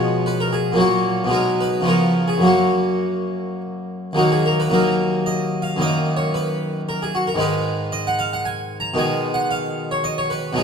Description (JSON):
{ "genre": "classical, baroque-style suite movement for harpsichord", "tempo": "111 BPM", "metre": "3/4", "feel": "rubato", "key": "F# major, Eb minor from 4.2 s", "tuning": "A4 = 440 Hz", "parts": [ { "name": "harpsichord", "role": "solo", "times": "0.0-10.6 s", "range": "Eb2 to Bb5", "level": "-18 LUFS", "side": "equal", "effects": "none" } ], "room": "wet recital hall reverb, RT60 1.6 s", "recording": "dark, warm production", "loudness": "-18 LUFS", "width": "side -6 dB against mid", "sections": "0.0-4.2 A section; 4.2-10.6 A section", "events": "none", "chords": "0.0 C#7/B; 0.8 F#/A#; 1.3 G#m7/B; 1.9 C#7; 2.5 F#; 4.2 Ebm; 5.8 Ebm/Gb; 7.4 Abm; 9.0 Abm/Cb" }